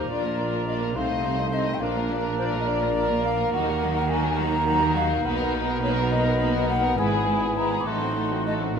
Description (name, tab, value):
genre	cinematic, playful, whimsical film cue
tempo	70 BPM (dotted quarters)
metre	6/8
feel	straight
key	Eb minor from 3.5 s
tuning	A4 = 441 Hz
part	dark studio violin section	melody	0.0-8.8 s	Gb4 to Eb5	-34 LUFS	left 4 dB	none
part	clear clarinet	second line	0.0-8.8 s	D4 to F4	-34 LUFS	equal	none
part	mellow hollow silver concert flute	second line	0.0-8.8 s	C5 to D6	-28 LUFS	left 3 dB	none
part	warm cor anglais	second line	0.0-8.8 s	F#4 to C5	-33 LUFS	right 2 dB	none
part	warm studio violin section	second line	0.0-8.8 s	C4 to G#4	-35 LUFS	left 4 dB	none
part	mellow bassoon	accompaniment	0.0-8.8 s	A3 to B3	-32 LUFS	right 3 dB	none
part	rich studio viola section	accompaniment	0.0-8.8 s	F3 to D4	-34 LUFS	equal	none
part	mellow French horn section	sustained chords	0.0-8.8 s	F#3 to F4	-34 LUFS	left 4 dB	none
part	mellow tuba	bass	0.0-8.8 s	G#1 to Eb2	-32 LUFS	right 4 dB	none
part	rich studio cello section	bass	0.0-8.8 s	Eb2 to Eb3	-31 LUFS	right 4 dB	none
part	rich studio double bass section	bass	0.0-8.8 s	G#1 to Eb2	-32 LUFS	right 3 dB	none
room	moderate scoring stage reverb, RT60 1.5 s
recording	minimal, uncompressed stereo recording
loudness	-22 LUFS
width	side -6 dB against mid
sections	0.0-8.8 A section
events	none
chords	0.1 Bb; 1.0 Adim/C; 1.8 Bb; 3.5 Ebm; 5.3 Bmaj7; 7.0 E/G#; 7.9 Adim7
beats	| 0.10 0.96 | 1.82 2.68 | 3.54 4.39 | 5.26 6.12 | 6.99 7.87 | 8.77